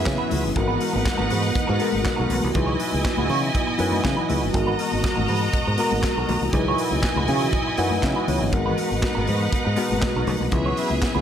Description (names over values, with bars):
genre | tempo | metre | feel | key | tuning
disco | 120 BPM | 4/4 | straight | G# minor | A4 = 436 Hz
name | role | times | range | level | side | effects
clear studio string section | second line | 0.0-11.2 s | B3 to A#5 | -26 LUFS | equal | slapback echo
electric guitar at the edge of break-up | accompaniment | 0.0-11.2 s | B3 to C#5 | -30 LUFS | right 4 dB | wah, wide subtle chorus
reed electric piano | accompaniment | 0.0-11.2 s | F#3 to F#5 | -27 LUFS | left 5 dB | overdrive, fast tremolo
ethereal airy pad | sustained chords | 0.0-11.2 s | B2 to D#5 | -30 LUFS | right 5 dB | ensemble chorus, built-in reverb
fingered electric bass | bass | 0.0-11.2 s | G1 to C#3 | -25 LUFS | right 1 dB | none
modern studio drum kit | drums | 0.1-11.1 s | handclaps, hi-hat, kick drum, snare drum | -27 LUFS | equal | none
congas | percussion | 0.1-11.2 s | none | -32 LUFS | left 6 dB | none
room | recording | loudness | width
light reverb, studio reverb | none | -20 LUFS | side -9 dB against mid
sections
0.0-11.2 A section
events
reed electric piano fill 7.5-8.5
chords
0.0 C#m7; 0.6 G#m9; 2.5 C#m11; 4.5 G#m9; 6.5 C#m11; 8.5 G#m9; 10.5 C#m7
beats
0.06 | 0.56 1.06 1.55 2.05 | 2.55 3.04 3.54 4.04 | 4.54 5.04 5.53 6.03 | 6.53 7.03 7.52 8.02 | 8.52 9.02 9.52 10.02 | 10.52 11.02